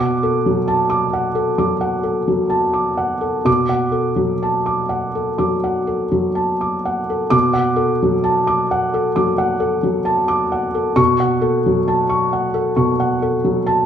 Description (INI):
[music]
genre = neoclassical minimalist piano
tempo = 61-67 BPM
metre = 4/4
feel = rubato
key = B minor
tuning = A4 = 440 Hz
[part]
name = felt-muted upright piano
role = solo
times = 0.0-13.9 s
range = B2 to D6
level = -16 LUFS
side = equal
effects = none
[sound]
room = wet large studio reverb, RT60 1.4 s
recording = band playing live in one room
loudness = -16 LUFS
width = side -8 dB against mid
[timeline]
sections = 0.0-7.3 A section; 7.3-13.9 B section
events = none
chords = 0.0 Bm7; 11.0 F#m/B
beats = 0.67 1.58 2.51 | 3.46 4.43 5.41 6.38 | 7.33 8.25 9.17 10.07 | 10.98 11.89 12.79 13.68